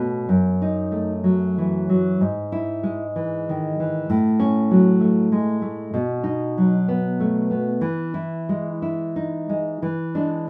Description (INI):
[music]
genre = romantic piece for solo classical guitar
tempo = 87-101 BPM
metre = 3/4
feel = rubato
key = E major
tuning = A4 = 440 Hz
[part]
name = nylon-string guitar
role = solo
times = 0.0-10.5 s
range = F#2 to E4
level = -22 LUFS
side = equal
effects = none
[sound]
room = light reverb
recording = none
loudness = -22 LUFS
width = mono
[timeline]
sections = 0.0-10.5 A section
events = none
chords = 0.3 D#dim/F#; 2.2 E/G#; 4.1 F#m/A; 5.9 B; 7.8 E; 9.8 E7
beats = | 0.28 0.92 1.57 | 2.21 2.84 3.48 | 4.09 4.70 5.30 | 5.92 6.56 7.19 | 7.83 8.48 9.16 | 9.82